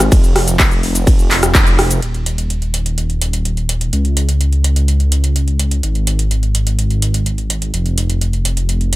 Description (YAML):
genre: EDM, festival progressive house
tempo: 126 BPM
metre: 4/4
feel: straight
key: F minor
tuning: A4 = 440 Hz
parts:
  - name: wide detuned saw bass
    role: bass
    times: 0.0-9.0 s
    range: Eb1 to Db2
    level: -15 LUFS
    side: equal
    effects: chorus, sidechain pumping
  - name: pop drum kit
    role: drums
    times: 0.0-9.0 s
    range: handclaps, hi-hat, ride cymbal, rim click, shaker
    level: -18 LUFS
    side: equal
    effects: overdrive
  - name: electronic kick drum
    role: drums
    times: 0.1-1.6 s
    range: none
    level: -11 LUFS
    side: equal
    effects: none
room: little or no reverb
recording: none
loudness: -13 LUFS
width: side -18 dB against mid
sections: 0.0-2.0 A section; 2.0-9.0 B section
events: drop 0.0-2.0; band accent 1.5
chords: none